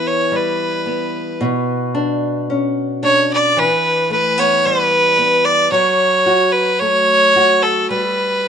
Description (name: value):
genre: celtic folk, Celtic slow air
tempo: 55 BPM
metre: 4/4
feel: rubato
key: unclear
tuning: A4 = 440 Hz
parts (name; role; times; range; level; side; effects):
- bright fiddle; melody; 0.0-8.5 s; A4 to D5; -13 LUFS; right 1 dB; none
- nylon-string guitar; accompaniment; 0.0-8.5 s; B2 to F#4; -19 LUFS; left 1 dB; none
room: light reverb, small room ambience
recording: rough home demo mix, nothing above 10.3 kHz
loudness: -13 LUFS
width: side -7 dB against mid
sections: 0.0-8.5 A section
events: none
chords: 0.0 Em; 1.4 Bmadd9; 3.6 Em; 5.7 F#m; 7.9 G